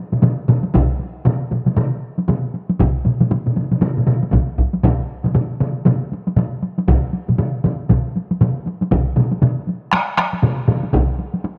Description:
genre	japanese traditional, taiko drum ensemble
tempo	118 BPM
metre	4/4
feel	swing 60% on 16ths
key	none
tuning	none
part	taiko ensemble	percussion	0.1-11.6 s	none	-23 LUFS	equal	none
part	taiko ensemble	percussion	0.1-11.1 s	none	-21 LUFS	equal	none
part	taiko ensemble	percussion	0.1-11.1 s	none	-23 LUFS	equal	none
part	taiko ensemble	percussion	0.7-11.1 s	none	-20 LUFS	equal	none
room	small room ambience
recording	dry, close 1970s-style studio recording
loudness	-18 LUFS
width	mono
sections	0.0-4.8 A section; 4.8-11.6 B section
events	none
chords	none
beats	0.23 | 0.75 1.26 1.77 2.28 | 2.79 3.31 3.82 4.33 | 4.84 5.35 5.86 6.37 | 6.88 7.38 7.89 8.40 | 8.91 9.41 9.92 10.43 | 10.93 11.44

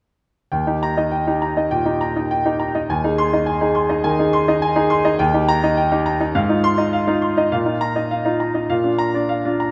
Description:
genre	classical, virtuoso piano study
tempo	103 BPM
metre	4/4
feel	rubato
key	Eb major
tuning	A4 = 438 Hz
part	clear concert grand piano	solo	0.5-9.7 s	Eb2 to C6	-19 LUFS	equal	none
room	moderate recital hall reverb, RT60 1.3 s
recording	none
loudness	-19 LUFS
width	mono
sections	0.5-9.7 A section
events	none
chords	0.5 Eb; 2.9 Ab/Eb; 5.2 Eb; 6.3 Ab6; 7.5 Bbsus4; 8.7 Bb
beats	| 0.52 1.12 1.72 2.31 | 2.89 3.47 4.05 4.62 | 5.19 5.77 6.35 6.93 | 7.51 8.11 8.70 9.30

